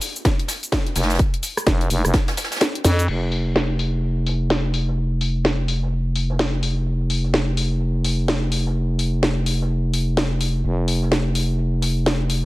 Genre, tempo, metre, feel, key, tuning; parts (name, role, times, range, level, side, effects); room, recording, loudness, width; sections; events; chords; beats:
bass house; 127 BPM; 4/4; swing 61% on 16ths; A4 = 441 Hz
house drum kit; drums; 0.0-12.4 s; crash cymbal, hi-hat, rim click, shaker, snare drum; -23 LUFS; equal; low-pass filter on hats, low-pass filter on snare, low-pass filter on perc, low-pass filter on cymbals, low-pass filter on room
jazz brush drum kit; drums; 0.0-12.4 s; hi-hat, snare drum; -32 LUFS; right 2 dB; sidechain pumping on hats, high-pass filter on hats, low-pass filter on hats, high-pass filter on snare, low-pass filter on snare, high-pass filter on room, low-pass filter on room
electronic kick drum; drums; 0.2-2.3 s; -20 LUFS; equal
growling FM bass; bass; 1.0-12.4 s; F1 to F2; -20 LUFS; equal; overdrive, sidechain pumping
little or no reverb; -19 LUFS; side -19 dB against mid
0.0-3.1 A section; 3.1-12.4 B section
drop 0.0-3.1; kick drops out 2.6-3.1; drum fill 2.8
0.25 0.72 | 1.19 1.67 2.14 2.61 | 3.08 3.56 4.03 4.50 | 4.97 5.45 5.92 6.39 | 6.86 7.34 7.81 8.28 | 8.75 9.23 9.70 10.17 | 10.64 11.12 11.59 12.06